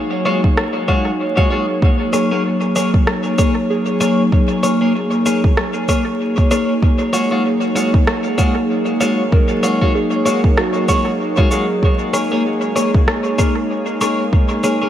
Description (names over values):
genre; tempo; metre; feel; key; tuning
ambient dub; 96 BPM; 4/4; swing 57% on 16ths; Bb minor; A4 = 438 Hz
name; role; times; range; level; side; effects
warbly tape-like pad; sustained chords; 0.0-14.9 s; Gb3 to Db5; -18 LUFS; equal; chorus, built-in reverb
twelve-string electric guitar; stabs; 0.3-14.9 s; Ab3 to Db5; -19 LUFS; left 1 dB; vintage 12-bit sampler grit, dub echo
electronic kick drum; drums; 0.4-14.5 s; none; -15 LUFS; equal; none
electronic rim click and cabasa; drums; 0.6-14.8 s; none; -24 LUFS; equal; dub echo
soft synth bell; arpeggios; 3.7-14.9 s; Gb4 to Db6; -26 LUFS; right 3 dB; chorus, tape echo
room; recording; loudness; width
moderate echo chamber reverb, RT60 2.1 s; vinyl crackle; -14 LUFS; side -11 dB against mid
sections
0.0-14.9 A section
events
none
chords
0.0 Ebm11; 1.8 Bbm7; 6.8 Ebm11; 11.8 Bbm7